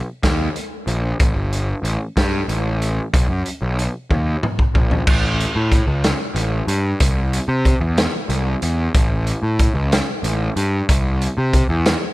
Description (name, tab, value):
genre	psychedelic rock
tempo	62 BPM (dotted quarters)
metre	6/8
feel	straight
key	unclear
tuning	A4 = 440 Hz
part	fuzz picked electric bass	bass	0.2-11.9 s	G1 to C3	-19 LUFS	equal	overdrive
part	raw garage drum kit	drums	0.2-12.0 s	crash cymbal, hi-hat, kick drum, snare drum, toms	-19 LUFS	equal	none
room	light reverb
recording	none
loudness	-16 LUFS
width	side -18 dB against mid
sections	0.0-5.1 A section; 5.1-12.1 B section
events	drum fill 4.1-5.1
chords	none